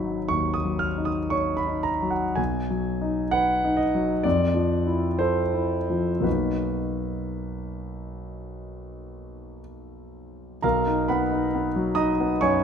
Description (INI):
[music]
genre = classical, impressionist solo piano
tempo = 52-68 BPM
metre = 4/4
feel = rubato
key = B lydian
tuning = A4 = 440 Hz
[part]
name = warm concert grand piano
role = solo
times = 0.0-12.6 s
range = G#1 to E#6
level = -23 LUFS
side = equal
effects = none
[sound]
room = wet stone room reverb, RT60 1.1 s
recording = none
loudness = -22 LUFS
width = side -7 dB against mid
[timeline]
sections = 0.0-10.6 A section; 10.6-12.6 B section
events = none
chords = 0.0 G#m7; 2.4 B6; 4.3 Fmaj7; 6.3 Bmaj7; 10.6 Badd9